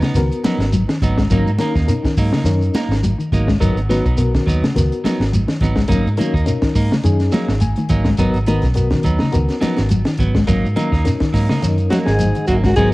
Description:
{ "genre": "afrobeat", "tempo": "105 BPM", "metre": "4/4", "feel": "swing 56% on 16ths", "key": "G# dorian", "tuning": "A4 = 440 Hz", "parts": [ { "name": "mellow electric guitar", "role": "arpeggios", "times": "0.0-12.9 s", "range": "B2 to G#3", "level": "-22 LUFS", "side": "left 2 dB", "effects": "lush chorus, cassette tape" }, { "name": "clean electric guitar", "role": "stabs", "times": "0.0-12.9 s", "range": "F#3 to D#4", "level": "-23 LUFS", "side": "right 2 dB", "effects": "cassette tape" }, { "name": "vintage muted fingered electric bass", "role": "bass", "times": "0.0-12.9 s", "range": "G#1 to G#2", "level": "-18 LUFS", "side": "equal", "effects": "transformer saturation" }, { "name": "compact cocktail drum kit", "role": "drums", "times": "0.0-12.9 s", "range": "hi-hat, kick drum, snare drum", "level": "-21 LUFS", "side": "equal", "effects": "cassette tape" }, { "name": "congas", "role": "percussion", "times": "0.0-12.9 s", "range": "none", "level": "-24 LUFS", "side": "right 1 dB", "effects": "none" }, { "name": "shekere", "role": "percussion", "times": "0.0-12.9 s", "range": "none", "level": "-24 LUFS", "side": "right 1 dB", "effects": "none" }, { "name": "reed electric piano", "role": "accompaniment", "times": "0.2-12.9 s", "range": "B3 to G#5", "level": "-24 LUFS", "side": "left 3 dB", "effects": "fast tremolo, cassette tape" }, { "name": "bright alto saxophone", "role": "melody", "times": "11.9-12.9 s", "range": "F#4 to G#4", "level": "-19 LUFS", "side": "equal", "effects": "cassette tape" }, { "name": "clear trombone section", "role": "second line", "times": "11.9-12.9 s", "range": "F#2 to G#2", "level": "-25 LUFS", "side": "right 2 dB", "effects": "cassette tape" } ], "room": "light reverb, small room reverb", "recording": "home recording on cassette", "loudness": "-14 LUFS", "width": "side -20 dB against mid", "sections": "0.0-12.8 A section", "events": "reed electric piano fill 7.3-8.2", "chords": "0.0 G#m7; 1.3 Bmaj7/G# (rootless); 3.6 G#m7", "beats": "0.16 0.74 | 1.31 1.89 2.46 3.03 | 3.61 4.18 4.75 5.33 | 5.90 6.48 7.05 7.62 | 8.20 8.77 9.34 9.91 | 10.49 11.06 11.64 12.21 | 12.78" }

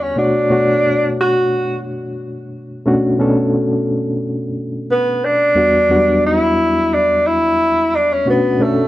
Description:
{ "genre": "soul", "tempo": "89 BPM", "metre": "4/4", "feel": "straight", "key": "B minor", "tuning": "A4 = 440 Hz", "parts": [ { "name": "mellow tenor saxophone", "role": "melody", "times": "0.0-8.9 s", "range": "A3 to F#4", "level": "-14 LUFS", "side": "equal", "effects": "none" }, { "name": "reed electric piano", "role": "accompaniment", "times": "0.0-8.9 s", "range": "E2 to C#5", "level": "-17 LUFS", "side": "equal", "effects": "fast tremolo" } ], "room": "moderate plate reverb, RT60 2.8 s", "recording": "none", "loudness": "-13 LUFS", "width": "side -15 dB against mid", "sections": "0.0-8.9 A section", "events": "none", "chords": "0.2 Bm9; 5.6 Em9; 8.3 Bm9", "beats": "| 0.17 0.84 1.52 2.19 | 2.87 3.54 4.21 4.89 | 5.56 6.24 6.91 7.58 | 8.26" }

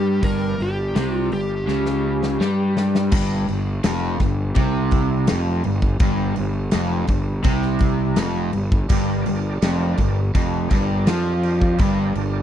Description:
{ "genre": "blues rock power trio and southern rock", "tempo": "83 BPM", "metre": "4/4", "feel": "straight", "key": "G minor", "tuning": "A4 = 440 Hz", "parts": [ { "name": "overdriven slide guitar", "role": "melody", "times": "0.0-2.7 s", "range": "G4 to Bb4", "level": "-25 LUFS", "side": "equal", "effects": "slapback echo" }, { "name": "overdriven tonewheel organ", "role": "sustained chords", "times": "0.0-3.1, 8.9-12.4 s", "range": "D4 to Bb5", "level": "-34 LUFS", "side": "right 5 dB", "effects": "slow rotary speaker, chorus vibrato" }, { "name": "overdriven semi-hollow guitar", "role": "riff", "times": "0.0-12.4 s", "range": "F2 to G3", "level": "-22 LUFS", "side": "equal", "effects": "none" }, { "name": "fuzz fingered electric bass", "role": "bass", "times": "0.0-12.4 s", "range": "F1 to G2", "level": "-24 LUFS", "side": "equal", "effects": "overdrive" }, { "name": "huge arena drum kit", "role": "drums", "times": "0.2-12.3 s", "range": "crash cymbal, hi-hat, kick drum, snare drum", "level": "-22 LUFS", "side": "equal", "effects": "none" } ], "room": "little or no reverb", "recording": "dry, close 1970s-style studio recording", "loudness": "-18 LUFS", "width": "side -10 dB against mid", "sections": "0.0-3.1 A section; 3.1-12.4 B section", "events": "drum fill 1.7-3.1; tonewheel organ fill 2.0-3.1", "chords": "0.0 Gm", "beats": "| 0.23 0.95 1.68 2.40 | 3.13 3.85 4.57 5.29 | 6.02 6.74 7.46 8.18 | 8.91 9.63 10.35 11.07 | 11.80" }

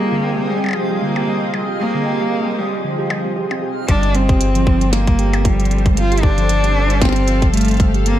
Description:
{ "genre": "IDM", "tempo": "115 BPM", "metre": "4/4", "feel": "swing 56% on 16ths", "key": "G minor", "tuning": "A4 = 440 Hz", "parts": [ { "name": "warm cello", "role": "melody", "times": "0.0-8.2 s", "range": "F3 to F4", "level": "-20 LUFS", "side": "equal", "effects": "tape echo" }, { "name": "granular cloud pad", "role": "sustained chords", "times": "0.0-8.2 s", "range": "C4 to G5", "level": "-24 LUFS", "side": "equal", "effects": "built-in reverb" }, { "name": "harp-like synth pluck", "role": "arpeggios", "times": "0.0-8.0 s", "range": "D3 to G4", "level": "-23 LUFS", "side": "right 2 dB", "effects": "chorus, digital delay" }, { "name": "backwards swelling texture", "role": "texture", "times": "0.0-3.9 s", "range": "F5", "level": "-34 LUFS", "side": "right 2 dB", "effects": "built-in reverb" }, { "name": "glitchy drum kit", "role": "drums", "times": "0.6-8.2 s", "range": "hi-hat, percussion blips, snare drum", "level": "-25 LUFS", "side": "equal", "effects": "studio reverb" }, { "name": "warm sub bass", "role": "bass", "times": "3.9-8.2 s", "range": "G1", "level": "-17 LUFS", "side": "equal", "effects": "none" }, { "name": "electronic kick drum", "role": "drums", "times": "3.9-7.9 s", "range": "none", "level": "-16 LUFS", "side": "equal", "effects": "studio reverb" } ], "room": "light reverb", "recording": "dark, warm production", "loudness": "-14 LUFS", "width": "side -12 dB against mid", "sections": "0.0-3.9 A section; 3.9-8.2 B section", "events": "none", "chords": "0.0 Fm11; 3.9 G9sus4", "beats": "0.23 0.76 1.28 | 1.80 2.32 2.84 3.36 | 3.88 4.41 4.93 5.45 | 5.97 6.49 7.01 7.54 | 8.06" }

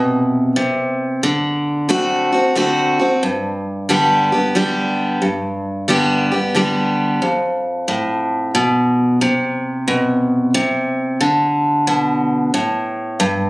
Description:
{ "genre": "country", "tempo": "90 BPM", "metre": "3/4", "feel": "swing 65% on 8ths", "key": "G major", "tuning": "A4 = 440 Hz", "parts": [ { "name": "picked steel-string acoustic guitar", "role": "solo", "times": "0.0-13.5 s", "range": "F2 to G4", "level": "-15 LUFS", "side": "equal", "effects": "none" } ], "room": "moderate large studio reverb, RT60 0.8 s", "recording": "recorded on a phone in the room, club reverb", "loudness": "-15 LUFS", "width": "side -22 dB against mid", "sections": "0.0-5.2 A section; 5.2-13.5 A section", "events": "none", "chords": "0.0 N.C.; 1.2 D7; 3.2 G; 7.2 F; 9.2 N.C.; 11.2 D5", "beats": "0.57 | 1.23 1.90 2.56 | 3.23 3.90 4.56 | 5.22 5.89 6.56 | 7.22 7.89 8.55 | 9.22 9.88 10.55 | 11.21 11.88 12.54 | 13.20" }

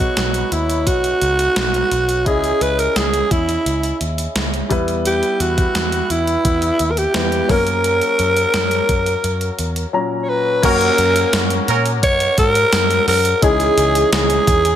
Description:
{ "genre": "1980s-style pop", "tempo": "86 BPM", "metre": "4/4", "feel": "straight", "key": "unclear", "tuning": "A4 = 440 Hz", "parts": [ { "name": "raspy alto saxophone", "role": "melody", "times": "0.0-14.8 s", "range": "E4 to C#5", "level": "-17 LUFS", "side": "right 1 dB", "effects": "none" }, { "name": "warm grand piano", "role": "accompaniment", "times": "0.0-14.8 s", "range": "A#2 to A#5", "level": "-22 LUFS", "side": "left 4 dB", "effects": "none" }, { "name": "vintage muted picked electric bass", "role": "bass", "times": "0.0-14.7 s", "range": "B1 to A#2", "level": "-22 LUFS", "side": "equal", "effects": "none" }, { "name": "clean 12-bit digital drum machine", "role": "drums", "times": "0.0-14.8 s", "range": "crash cymbal, hi-hat, kick drum, snare drum, tambourine", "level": "-21 LUFS", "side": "equal", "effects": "gated reverb" }, { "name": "warm horn section", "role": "stabs", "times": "10.6-11.9 s", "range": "F#3 to A#4", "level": "-22 LUFS", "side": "right 5 dB", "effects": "ping-pong delay" } ], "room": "light reverb, digital ambience", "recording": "none", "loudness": "-14 LUFS", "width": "side -10 dB against mid", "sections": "0.0-10.6 A section; 10.6-14.8 B section", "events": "none", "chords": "0.0 B; 2.3 C#madd9; 4.7 Em; 7.5 F#; 13.4 C#madd9", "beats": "0.17 0.87 1.56 | 2.26 2.96 3.66 4.36 | 5.05 5.75 6.45 7.15 | 7.84 8.54 9.24 9.94 | 10.63 11.33 12.03 12.73 | 13.43 14.12" }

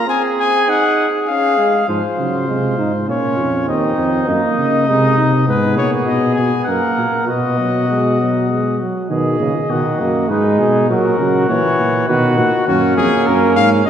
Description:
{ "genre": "classical, imitative canzona for brass ensemble", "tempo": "100 BPM", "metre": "3/4", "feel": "straight", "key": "B major from 5.5 s", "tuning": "A4 = 440 Hz", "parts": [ { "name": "clear trumpet", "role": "melody", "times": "0.0-13.9 s", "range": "F#4 to G#5", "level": "-19 LUFS", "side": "left 5 dB", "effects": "none" }, { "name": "mellow trumpet", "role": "second line", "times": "0.0-13.9 s", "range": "C#4 to A#4", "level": "-20 LUFS", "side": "right 2 dB", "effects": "none" }, { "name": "clear trombone", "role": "accompaniment", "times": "0.0-13.9 s", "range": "B2 to D#4", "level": "-19 LUFS", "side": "right 1 dB", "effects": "none" }, { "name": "warm tuba", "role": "bass", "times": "1.9-13.9 s", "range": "D#2 to D#3", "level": "-18 LUFS", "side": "right 1 dB", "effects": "none" } ], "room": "wet church reverb, RT60 3.0 s", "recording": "heard from further back in the room", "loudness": "-13 LUFS", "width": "side -9 dB against mid", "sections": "0.0-1.9 A section; 1.9-9.1 B section; 9.1-13.9 A section", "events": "none", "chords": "0.1 G#/B#; 1.3 C#; 1.9 Fm/Ab; 3.1 A#m; 3.7 D#5; 4.9 G#/B#; 5.5 G#m; 6.7 F#; 7.3 B; 10.3 G#m; 10.9 F#/A#; 12.1 B; 12.7 F#", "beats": "| 0.08 0.68 1.28 | 1.88 2.49 3.09 | 3.69 4.28 4.88 | 5.48 6.07 6.67 | 7.28 7.88 8.49 | 9.10 9.70 10.30 | 10.90 11.49 12.09 | 12.69 13.28 13.87" }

